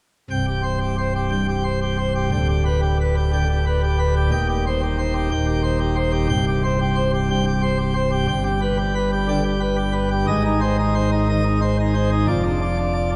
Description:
classical, organ toccata; 120 BPM; 4/4; straight; C minor; A4 = 439 Hz
pipe organ, plenum; solo; 0.3-13.2 s; C1 to G5; -21 LUFS; equal
wet church reverb, RT60 3.4 s; -21 LUFS; mono
0.3-13.2 A section
0.3 C5; 2.3 G/D; 4.3 Cm/Eb; 6.3 C5; 8.3 G; 10.3 Ab; 12.3 Dm/F
| 0.30 0.80 1.31 1.81 | 2.31 2.81 3.32 3.82 | 4.32 4.82 5.32 5.81 | 6.31 6.80 7.30 7.80 | 8.29 8.79 9.29 9.79 | 10.29 10.78 11.28 11.79 | 12.29 12.79

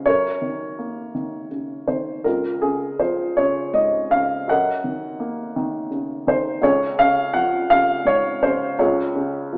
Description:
classical, lyrical solo piano; 55 BPM (dotted quarters); 6/8; rubato; Db major; A4 = 442 Hz
dark upright piano; solo; 0.0-9.6 s; Db2 to Gb5; -21 LUFS; equal
wet recital hall reverb, RT60 1.6 s; recorded in a church or concert hall, AM radio sound; -21 LUFS; mono
0.0-9.6 A section
0.1 Gb6; 2.2 Db; 4.5 Gb6; 6.6 Db
| 0.06 1.14 | 2.25 3.38 | 4.49 5.56 | 6.63 7.70 | 8.79

